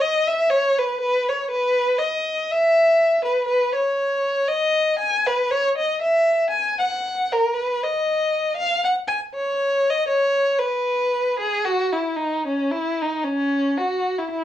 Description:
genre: alpine folk.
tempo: 112-122 BPM.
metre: 2/4.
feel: swing 55% on 8ths.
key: unclear.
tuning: A4 = 440 Hz.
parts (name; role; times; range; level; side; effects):
rich violin; solo; 0.0-14.4 s; C#4 to G#5; -19 LUFS; equal; cassette tape.
room: moderate studio reverb, RT60 0.5 s.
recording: home recording on cassette, small room reverb.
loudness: -19 LUFS.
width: side -11 dB against mid.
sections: 0.0-3.5 A section; 3.5-11.7 B section; 11.7-14.4 C section.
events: none.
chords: none.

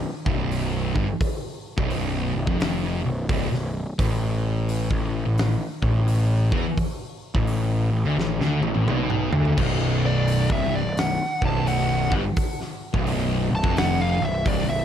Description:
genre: stoner and doom metal.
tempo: 86 BPM.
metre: 4/4.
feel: swing 64% on 8ths.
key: B minor.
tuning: A4 = 442 Hz.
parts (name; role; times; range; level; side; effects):
thick fuzz guitar; riff; 0.3-14.8 s; B1 to E3; -27 LUFS; left 7 dB; distortion.
thick fuzz guitar; riff; 0.3-14.8 s; B1 to E3; -27 LUFS; right 6 dB; distortion.
fuzz picked electric bass; bass; 0.3-14.8 s; B0 to E2; -27 LUFS; equal; overdrive.
big rock drum kit; drums; 0.3-14.7 s; crash cymbal, hi-hat, kick drum, snare drum, toms; -27 LUFS; equal; none.
overdriven electric guitar; riff; 9.6-14.8 s; B1 to G2; -31 LUFS; equal; none.
fuzz lead guitar; melody; 10.1-14.8 s; D5 to A5; -27 LUFS; equal; distortion, analog delay.
room: light reverb, small room ambience.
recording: dark, warm production.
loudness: -21 LUFS.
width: side -9 dB against mid.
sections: 0.0-9.6 A section; 9.6-14.8 B section.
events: drum fill 8.2-9.6; lead electric guitar solo 9.6-14.8.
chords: 0.0 G7/B (rootless); 4.0 A5; 9.6 B5.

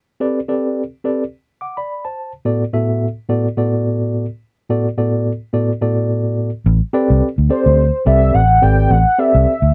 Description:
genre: early-eighties boogie funk.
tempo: 107 BPM.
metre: 4/4.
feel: swing 56% on 16ths.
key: A dorian.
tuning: A4 = 440 Hz.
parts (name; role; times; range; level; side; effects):
mellow tine electric piano; accompaniment; 0.2-9.5 s; A2 to D6; -20 LUFS; equal; none.
vintage muted fingered electric bass; bass; 6.7-9.7 s; G#1 to D2; -15 LUFS; equal; none.
warm velvety synth lead; melody; 7.5-9.7 s; C5 to G5; -17 LUFS; equal; chorus, slapback echo.
room: little or no reverb.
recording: dry, close 1970s-style studio recording.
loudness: -16 LUFS.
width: mono.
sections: 0.0-6.7 A section; 6.7-9.7 B section.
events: none.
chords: 0.0 Am11; 2.2 Bm7/A; 6.7 Am11.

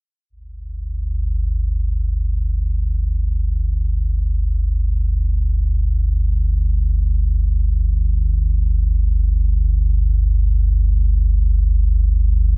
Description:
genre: ambient.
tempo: free time.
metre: none.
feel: none.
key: unclear.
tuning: A4 = 439 Hz.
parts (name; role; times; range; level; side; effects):
deep rumbling drone; drone; 0.3-12.6 s; G1 to D2; -16 LUFS; equal; built-in reverb, wide subtle chorus.
room: little or no reverb.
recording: worn, warbling old tape, cassette tape, warbly pitch drift, nothing above 10.8 kHz.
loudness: -16 LUFS.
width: side -40 dB against mid.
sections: 0.3-12.6 A section.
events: none.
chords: 0.3 G5.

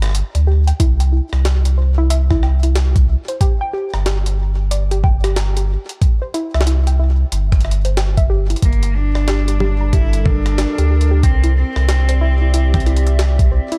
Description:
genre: IDM.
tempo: 92 BPM.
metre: 4/4.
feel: swing 62% on 16ths.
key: unclear.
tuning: A4 = 442 Hz.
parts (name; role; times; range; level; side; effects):
warm sub bass; bass; 0.0-13.6 s; G1 to D2; -17 LUFS; equal; tube saturation.
jungle sampler-style drum kit; drums; 0.0-13.8 s; hi-hat, rim click, snare drum, toms; -28 LUFS; equal; delay.
warbly dusty pluck; arpeggios; 0.3-13.8 s; E4 to Bb5; -28 LUFS; equal; chorus, delay.
electronic kick drum; drums; 0.8-13.5 s; none; -17 LUFS; equal; none.
bright cello; melody; 8.6-13.5 s; Bb3 to E4; -27 LUFS; equal; delay.
hollow soft pad; sustained chords; 8.6-13.8 s; G3 to E5; -30 LUFS; equal; chorus.
room: little or no reverb.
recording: dark, warm production.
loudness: -16 LUFS.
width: mono.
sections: 0.0-13.8 A section.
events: none.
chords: 0.0 G5; 0.8 C; 3.4 N.C.; 6.0 C; 8.6 Gm; 11.2 C.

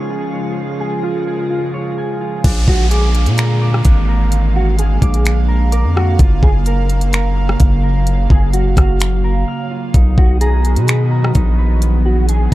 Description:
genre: hip hop, atmospheric cloud-rap.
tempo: 128 BPM.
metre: 4/4.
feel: half-time.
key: unclear.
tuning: A4 = 441 Hz.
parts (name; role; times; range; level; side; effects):
mellow electric guitar; melody; 0.0-12.5 s; E#4 to A#4; -24 LUFS; equal; ensemble chorus, low-pass filter, digital delay.
airy breathy pad; sustained chords; 0.0-12.5 s; C#3 to E#5; -22 LUFS; right 1 dB; chorus, sidechain pumping, low-pass filter.
concert harp; arpeggios; 0.0-12.5 s; D4 to E#6; -28 LUFS; equal; low-pass filter, digital delay.
drifting glass-harmonics texture; texture; 0.0-2.4, 10.3-11.8 s; B3 to E#5; -31 LUFS; right 1 dB; chorus, built-in reverb.
long sustained 808-style bass; bass; 2.4-12.5 s; F#1 to B2; -14 LUFS; equal; none.
trap drum kit; drums; 2.4-12.5 s; crash cymbal, finger snaps, hi-hat, kick drum, rim click; -13 LUFS; equal; none.
downlifter; sound effects; 2.4-6.2 s; none; -28 LUFS; equal; none.
room: little or no reverb.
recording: dark, warm production, lossy compression artefacts.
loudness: -12 LUFS.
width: side -16 dB against mid.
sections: 0.0-2.4 A section; 2.4-12.5 B section.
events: break 9.5-9.9.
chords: 0.0 C#; 2.4 A#7; 6.2 F#maj7; 9.9 Bmaj7.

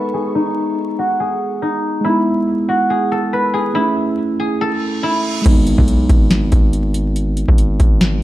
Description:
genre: hip hop, trap.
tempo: 141 BPM.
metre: 4/4.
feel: half-time.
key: G# phrygian.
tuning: A4 = 439 Hz.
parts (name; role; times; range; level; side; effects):
guzheng; melody; 0.0-7.6 s; D#4 to B4; -18 LUFS; equal; low-pass filter.
mellow tine electric piano; accompaniment; 0.0-8.2 s; G#3 to E4; -20 LUFS; right 1 dB; low-pass filter.
reverse cymbal and impact; sound effects; 4.7-7.2 s; none; -29 LUFS; equal; none.
distorted 808-style bass; bass; 5.5-8.2 s; G#1 to B1; -17 LUFS; equal; distortion.
booming analog drum machine; drums; 5.5-8.1 s; crash cymbal, hi-hat, kick drum, snare drum; -13 LUFS; equal; none.
room: light reverb.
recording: dark, warm production, vinyl crackle.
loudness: -14 LUFS.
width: side -15 dB against mid.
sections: 0.0-5.5 A section; 5.5-8.2 B section.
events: filter sweep 0.0-5.5; reverse cymbal 4.7-5.5; impact 5.5-7.2.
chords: 0.0 G#m; 2.1 E/G#; 3.8 A; 5.5 G#m.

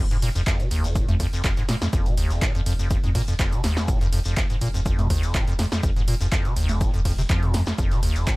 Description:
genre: acid house.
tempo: 123 BPM.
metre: 4/4.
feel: swing 53% on 16ths.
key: F minor.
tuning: A4 = 438 Hz.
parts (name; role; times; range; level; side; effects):
acid bass, square; riff; 0.0-8.4 s; Eb2 to F3; -25 LUFS; equal; tube saturation, lush chorus, analog delay.
round analog bass; bass; 0.0-8.2 s; Eb1 to F2; -26 LUFS; equal; sidechain pumping.
breakbeat sampler-style drum kit; drums; 0.1-8.4 s; hi-hat, shaker, snare drum; -40 LUFS; equal; none.
punchy analog drum machine; drums; 0.1-8.4 s; congas, handclaps, hi-hat, ride cymbal, snare drum; -30 LUFS; equal; overdrive.
shekere; percussion; 0.1-8.4 s; none; -40 LUFS; left 4 dB; none.
electronic kick drum; drums; 0.5-8.4 s; none; -23 LUFS; equal; overdrive.
room: little or no reverb.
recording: none.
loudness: -20 LUFS.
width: side -23 dB against mid.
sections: 0.0-8.4 A section.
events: none.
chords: 0.0 F5.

